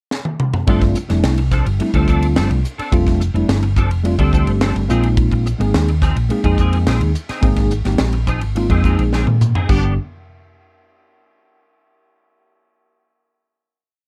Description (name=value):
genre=electric jazz fusion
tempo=106 BPM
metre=4/4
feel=straight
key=unclear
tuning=A4 = 436 Hz
part: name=crisp fusion drum kit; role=drums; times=0.1-9.8 s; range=crash cymbal, hi-hat, kick drum, ride cymbal, snare drum, toms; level=-22 LUFS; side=equal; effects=none
part: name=tine electric piano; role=accompaniment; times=0.7-10.0 s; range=D3 to Ab4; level=-22 LUFS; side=equal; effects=ensemble chorus
part: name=clean electric guitar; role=stabs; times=0.7-9.9 s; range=F3 to A4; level=-28 LUFS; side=equal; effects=ensemble chorus
part: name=hollow-body short-scale fingered electric bass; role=bass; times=0.7-10.0 s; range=F1 to Bb2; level=-19 LUFS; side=equal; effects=none
room=little or no reverb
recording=dark, warm production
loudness=-17 LUFS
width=mono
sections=0.0-0.7 pickup bar; 0.7-9.7 groove; 9.7-12.0 final chord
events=drum fill 0.1-0.7, 9.1-9.7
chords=0.0 N.C.; 0.7 G9sus4; 4.9 Bb9sus4; 9.7 G